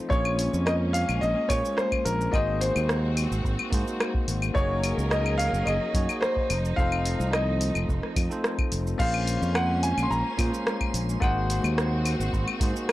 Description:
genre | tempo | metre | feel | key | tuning
sunset chillout | 108 BPM | 4/4 | straight | Bb minor | A4 = 439 Hz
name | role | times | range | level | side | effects
bell-like tine electric piano | accompaniment | 0.0-12.9 s | Bb3 to Db5 | -32 LUFS | moving between left 5 dB and right 5 dB | auto-pan, tape echo
warm symphonic string section | sustained chords | 0.0-12.9 s | F3 to Bb4 | -34 LUFS | left 1 dB | none
clear concert grand piano | melody | 0.1-12.8 s | Bb4 to C6 | -29 LUFS | equal | tape echo
overdriven fingered electric bass | bass | 0.1-12.7 s | F1 to Bb2 | -27 LUFS | equal | none
deep house drum kit | drums | 0.1-12.9 s | claves, crash cymbal, hi-hat, rim click, shaker | -31 LUFS | left 1 dB | overdrive
electronic kick drum | drums | 0.1-12.7 s | none | -28 LUFS | equal | none
drifting glass-harmonics texture | texture | 9.5-12.9 s | C6 | -44 LUFS | right 10 dB | chorus, built-in reverb
room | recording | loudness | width
little or no reverb | dry, gritty hardware recording, cassette tape | -23 LUFS | side -16 dB against mid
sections
0.0-12.9 A section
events
none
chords
0.1 Bbm7; 2.3 Ab7; 4.6 Gb6; 6.5 F7; 9.0 Bbm7; 11.2 Ab7

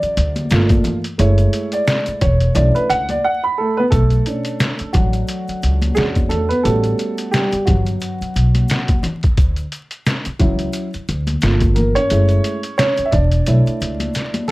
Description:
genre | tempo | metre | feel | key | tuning
hip hop, jazz-hop | 88 BPM | 4/4 | swing 57% on 16ths | B minor | A4 = 442 Hz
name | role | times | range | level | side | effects
dark baby grand piano | accompaniment | 0.0-14.5 s | C#3 to B5 | -19 LUFS | right 1 dB | plate reverb
upright bass | bass | 0.0-14.1 s | E1 to E2 | -17 LUFS | equal | none
trip hop sampler-style drum kit | drums | 0.0-14.5 s | hi-hat, kick drum, snare drum | -19 LUFS | equal | none
tube shaker and congas | percussion | 0.0-14.5 s | none | -27 LUFS | left 2 dB | none
room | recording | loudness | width
light reverb | vinyl crackle | -15 LUFS | side -20 dB against mid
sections
0.0-3.9 A section; 3.9-14.5 B section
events
grand piano solo 0.0-3.9, 3.9-14.5; drums muted 3.2-3.9; drum fill 14.1-14.5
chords
0.0 Dmaj7; 0.5 Gm9; 1.2 F#m9; 2.6 Bm11; 3.9 Bm9; 6.0 E13; 6.6 A13; 9.4 Dmaj7; 11.4 Gm9; 12.1 F#m9; 13.5 Bm11

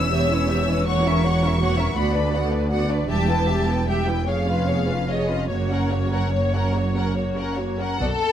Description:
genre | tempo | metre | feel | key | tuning
classical, slow romantic movement for string orchestra | 47-55 BPM (dotted quarters) | 6/8 | rubato | unclear | A4 = 442 Hz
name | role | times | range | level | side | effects
rich symphonic violin section | melody | 0.0-8.1 s | C#5 to E6 | -28 LUFS | left 4 dB | none
warm symphonic violin section | second line | 0.0-8.3 s | G4 to G5 | -26 LUFS | left 2 dB | none
rich symphonic viola section | accompaniment | 0.0-8.1 s | G3 to A#4 | -28 LUFS | right 1 dB | none
rich symphonic cello section | bass | 0.0-8.1 s | D2 to B2 | -25 LUFS | right 1 dB | none
rich symphonic double bass section | bass | 0.0-8.1 s | E1 to D2 | -25 LUFS | right 2 dB | none
room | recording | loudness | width
light reverb | none | -19 LUFS | side -10 dB against mid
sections
0.0-8.0 A section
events
none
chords
0.0 C#m7b5/E; 0.9 F#7/E; 2.0 Bm/D; 3.1 Em; 4.3 C#7/E#; 5.5 F#

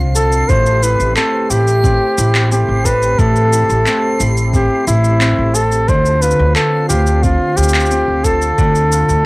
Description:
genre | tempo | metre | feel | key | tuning
folktronica | 89 BPM | 4/4 | straight | D minor | A4 = 445 Hz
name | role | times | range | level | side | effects
warm analog pad | sustained chords | 0.0-9.3 s | D3 to G4 | -25 LUFS | equal | chorus, vintage 12-bit sampler grit
Celtic harp | arpeggios | 0.0-9.3 s | A2 to A4 | -20 LUFS | left 1 dB | analog delay
upright bass | bass | 0.0-9.2 s | A1 to D2 | -15 LUFS | equal | tube saturation
backwards swelling texture | texture | 0.0-9.3 s | C7 | -30 LUFS | right 3 dB | built-in reverb
warm flugelhorn | melody | 0.2-9.3 s | E4 to C5 | -15 LUFS | equal | cassette tape
electronic cabasa and handclaps | drums | 0.2-9.2 s | none | -20 LUFS | equal | cassette tape
electronic kick drum | drums | 0.5-8.7 s | none | -16 LUFS | equal | cassette tape
room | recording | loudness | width
light reverb, small room ambience | home recording on cassette | -11 LUFS | side -23 dB against mid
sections
0.0-9.3 A section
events
none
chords
0.5 Am7; 5.9 Dm7

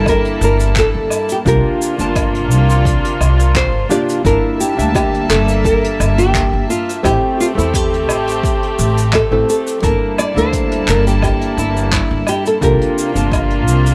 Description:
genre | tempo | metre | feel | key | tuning
sunset chillout | 86 BPM | 4/4 | swing 53% on 16ths | G dorian | A4 = 439 Hz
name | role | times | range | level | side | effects
nylon-string guitar | melody | 0.0-13.9 s | E4 to D5 | -20 LUFS | equal | tape echo
nylon-string guitar | accompaniment | 0.0-13.9 s | A3 to A5 | -23 LUFS | equal | tape echo
warm studio string section | sustained chords | 0.0-13.9 s | C3 to A5 | -23 LUFS | equal | none
upright bass | bass | 0.0-13.9 s | G1 to E2 | -19 LUFS | equal | tube saturation
electronic kick drum | drums | 0.1-13.5 s | none | -23 LUFS | equal | overdrive
vintage brush drum kit | drums | 0.1-13.9 s | handclaps, hi-hat, shaker, woodblock | -25 LUFS | equal | none
room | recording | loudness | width
small room reverb | dry, gritty hardware recording | -15 LUFS | mono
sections
0.0-13.9 A section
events
none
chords
0.0 Gm69; 1.5 C9sus4; 4.2 Gm69; 7.0 Am7; 9.8 Gm69; 12.6 C9sus4

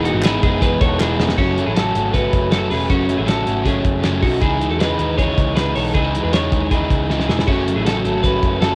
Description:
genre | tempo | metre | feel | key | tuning
jangly indie pop | 157 BPM | 4/4 | straight | E major | A4 = 439 Hz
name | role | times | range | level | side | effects
crunchy overdriven guitar | accompaniment | 0.0-8.8 s | F#2 to D#4 | -23 LUFS | equal | cassette tape
twelve-string electric guitar | arpeggios | 0.0-8.8 s | C#4 to C#5 | -23 LUFS | equal | cassette tape, tape echo
vintage muted picked electric bass | bass | 0.0-8.8 s | E1 to E2 | -26 LUFS | equal | none
cloth-damped thuddy drum kit | drums | 0.1-8.7 s | crash cymbal, hi-hat, kick drum, snare drum | -22 LUFS | equal | cassette tape
group handclap | percussion | 0.2-1.1 s | none | -33 LUFS | equal | none
room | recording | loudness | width
studio reverb | home recording on cassette | -18 LUFS | mono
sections
0.0-1.4 A section; 1.4-8.8 B section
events
drum fill 1.0-1.4, 7.1-7.5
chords
0.0 Emaj7

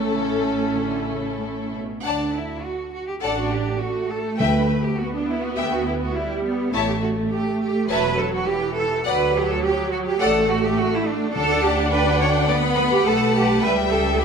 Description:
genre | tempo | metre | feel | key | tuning
quick classical-period movement for symphony orchestra | 103 BPM | 4/4 | rubato | D major | A4 = 440 Hz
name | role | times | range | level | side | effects
rich studio violin section | melody | 0.0-14.2 s | A4 to B5 | -28 LUFS | left 6 dB | none
rich studio violin section | second line | 0.0-14.2 s | E4 to F#5 | -27 LUFS | left 5 dB | none
rich studio viola section | accompaniment | 0.0-14.2 s | E3 to E4 | -24 LUFS | right 2 dB | none
mellow French horn section | sustained chords | 0.0-1.7 s | A3 to C#4 | -28 LUFS | left 1 dB | none
rich studio cello section | bass | 0.0-14.2 s | A2 to D5 | -24 LUFS | right 3 dB | none
rich studio double bass section | bass | 0.0-14.2 s | E1 to D2 | -28 LUFS | right 3 dB | none
timpani | percussion | 4.4-5.2, 11.4-12.2 s | D3 | -28 LUFS | left 2 dB | none
room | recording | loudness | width
moderate concert hall reverb, RT60 2.0 s | none | -19 LUFS | side -6 dB against mid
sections
0.0-2.0 A section; 2.0-14.2 B section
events
none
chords
0.0 A; 2.0 D; 4.4 Em/D; 6.7 A7; 9.1 D; 11.4 G/D; 13.6 A7/C#

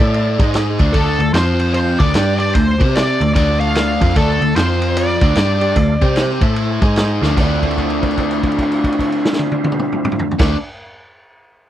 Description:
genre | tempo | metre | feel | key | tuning
blues rock power trio and southern rock | 149 BPM | 4/4 | swing 63% on 8ths | D minor | A4 = 440 Hz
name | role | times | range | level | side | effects
smooth overdriven lead guitar | melody | 0.0-6.9 s | A4 to F5 | -20 LUFS | equal | wah, slapback echo
percussive tonewheel organ | sustained chords | 0.0-10.5 s | F3 to A5 | -27 LUFS | right 5 dB | slow rotary speaker, overdrive, chorus vibrato
biting overdriven guitar | riff | 0.0-10.6 s | D3 to C5 | -18 LUFS | left 1 dB | none
vintage muted picked electric bass | bass | 0.0-10.5 s | D2 to C3 | -18 LUFS | equal | none
vintage drum kit | drums | 0.1-10.5 s | crash cymbal, kick drum, ride cymbal, snare drum, toms | -19 LUFS | equal | none
room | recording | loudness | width
little or no reverb | dry, close 1970s-style studio recording | -13 LUFS | side -12 dB against mid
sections
0.0-7.4 A section; 7.4-10.6 B section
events
tonewheel organ fill 6.2-7.4; drum fill 7.2; held note 7.4-10.3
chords
0.3 G#5; 0.7 Dm; 1.3 F5; 1.9 Dm; 2.1 G5; 2.5 Dm; 2.7 C5; 3.1 Dm; 4.6 F5; 5.2 Dm; 5.4 G5; 5.8 Dm; 6.0 C5; 6.4 A5; 6.8 G#5; 7.2 Dm; 7.4 Dm9

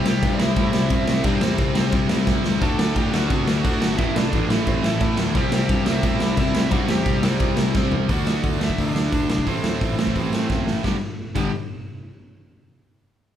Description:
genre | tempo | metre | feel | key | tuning
punk rock | 175 BPM | 4/4 | straight | unclear | A4 = 444 Hz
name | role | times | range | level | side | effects
high-gain lead guitar | melody | 0.0-11.5 s | C4 to A5 | -29 LUFS | right 1 dB | distortion
crunchy overdriven guitar | riff | 0.0-11.5 s | G2 to D4 | -25 LUFS | left 6 dB | none
distorted electric guitar | riff | 0.0-11.5 s | G2 to D4 | -28 LUFS | right 8 dB | overdrive
fuzz picked electric bass | bass | 0.0-11.5 s | F#1 to C3 | -26 LUFS | equal | overdrive
raw garage drum kit | drums | 0.1-11.4 s | crash cymbal, hi-hat, kick drum, snare drum, toms | -22 LUFS | right 1 dB | none
room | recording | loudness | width
light reverb | band playing live in one room | -18 LUFS | side -10 dB against mid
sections
0.0-8.1 A section; 8.1-10.8 B section; 10.8-12.2 C section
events
drum fill 2.3-2.6, 7.7-8.1, 10.5-10.8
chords
0.0 C; 2.6 D; 4.0 A5; 5.4 C; 8.1 D; 9.5 Am; 10.8 G5

